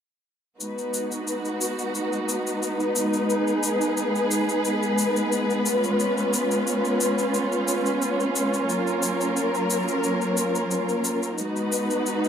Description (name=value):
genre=sunset chillout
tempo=89 BPM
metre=4/4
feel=swing 53% on 16ths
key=G# dorian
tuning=A4 = 440 Hz
part: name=warm studio string section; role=sustained chords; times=0.6-12.3 s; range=F#3 to B4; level=-22 LUFS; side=equal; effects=plate reverb
part: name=cabasa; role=drums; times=0.6-12.3 s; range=none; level=-30 LUFS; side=left 2 dB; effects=none
room=wet studio reverb, RT60 0.6 s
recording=rough home demo mix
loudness=-22 LUFS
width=side -8 dB against mid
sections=0.6-12.3 A section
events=none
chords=0.6 G#m7; 5.7 C#7; 8.7 F#maj7; 11.4 G#m7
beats=| 0.60 1.28 1.95 2.63 | 3.30 3.97 4.65 5.32 | 6.00 6.67 7.34 8.02 | 8.69 9.37 10.04 10.71 | 11.39 12.06